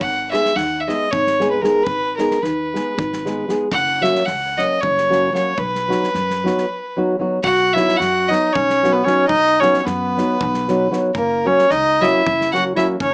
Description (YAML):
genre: balkan folk, Balkan wedding band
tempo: 226 BPM (eighths)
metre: 7/8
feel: straight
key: B major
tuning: A4 = 440 Hz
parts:
  - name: clear fiddle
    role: melody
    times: 0.0-13.1 s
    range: A#4 to F#5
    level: -21 LUFS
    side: equal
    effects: none
  - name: upright bass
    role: bass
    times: 0.0-13.1 s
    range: F#1 to F#2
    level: -30 LUFS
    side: equal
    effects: none
  - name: natural country drum kit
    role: percussion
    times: 0.0-13.1 s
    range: kick drum, snare drum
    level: -33 LUFS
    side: equal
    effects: none
  - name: nylon-string guitar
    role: accompaniment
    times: 0.3-13.0 s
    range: F#3 to G#4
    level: -22 LUFS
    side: equal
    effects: none
  - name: warm clarinet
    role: second line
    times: 7.4-13.1 s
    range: A#3 to F#4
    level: -23 LUFS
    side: equal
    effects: none
room: moderate studio reverb, RT60 0.5 s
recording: small speaker sound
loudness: -18 LUFS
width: mono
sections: 0.0-7.4 A section; 7.4-13.1 A section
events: break 6.6-7.4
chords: 0.0 G#m; 3.7 F#; 5.6 B; 11.1 F#